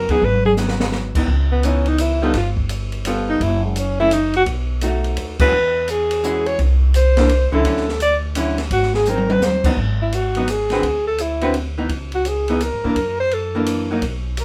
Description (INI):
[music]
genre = jazz, small-group swing and bop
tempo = 170 BPM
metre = 3/4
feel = swing 64% on 8ths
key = G# minor from 9.8 s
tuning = A4 = 440 Hz
[part]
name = warm alto saxophone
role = melody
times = 0.0-14.4 s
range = G#3 to D5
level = -21 LUFS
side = equal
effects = none
[part]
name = archtop guitar, miked and amplified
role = accompaniment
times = 0.0-14.0 s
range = D3 to B4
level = -24 LUFS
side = equal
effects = none
[part]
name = upright bass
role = bass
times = 0.0-14.4 s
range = F#1 to C#3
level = -23 LUFS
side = equal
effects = none
[part]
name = open jazz drum kit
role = drums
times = 0.1-14.4 s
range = crash cymbal, hi-hat, kick drum, ride cymbal, snare drum, toms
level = -28 LUFS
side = equal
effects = none
[sound]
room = light reverb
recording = none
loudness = -19 LUFS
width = mono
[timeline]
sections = 0.0-1.3 A section; 1.3-9.8 B section; 9.8-14.4 A section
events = drum fill 0.2-0.9, 9.1-9.4; band accent 5.4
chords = 0.0 G#m7; 1.3 C#m9; 2.3 G9; 3.4 F#7(no3); 4.5 B7; 5.5 E69; 6.6 Cadd9; 7.6 Dmaj9; 8.7 G#7; 9.8 G#m7; 10.8 Dsus2; 11.9 C#m; 13.0 F#7alt